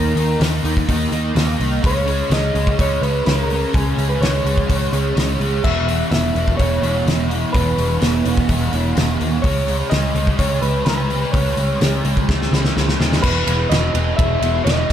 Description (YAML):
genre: rock, shoegaze and dream pop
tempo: 126 BPM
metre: 4/4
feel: straight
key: E lydian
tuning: A4 = 440 Hz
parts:
  - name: electric guitar through a small old amp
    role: melody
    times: 0.0-14.9 s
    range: G#4 to E5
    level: -24 LUFS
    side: equal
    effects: diffuse ambient delay
  - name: fuzz guitar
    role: riff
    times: 0.0-14.9 s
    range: E2 to D#4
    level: -21 LUFS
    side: right 1 dB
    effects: distortion, ensemble chorus
  - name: vintage muted picked electric bass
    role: bass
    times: 0.0-14.9 s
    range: E1 to D#2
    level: -20 LUFS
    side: equal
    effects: none
  - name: loose indie drum kit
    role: drums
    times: 0.2-14.9 s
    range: crash cymbal, hi-hat, kick drum, ride cymbal, snare drum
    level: -21 LUFS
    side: equal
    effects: none
room: moderate plate reverb, RT60 1.9 s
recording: dreamy mix soaked in reverb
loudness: -15 LUFS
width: side -10 dB against mid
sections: 0.0-13.2 A section; 13.2-14.9 B section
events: drum fill 12.3-13.2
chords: 0.0 D#5; 1.8 C#5; 5.6 E5; 9.4 C#5; 13.2 E5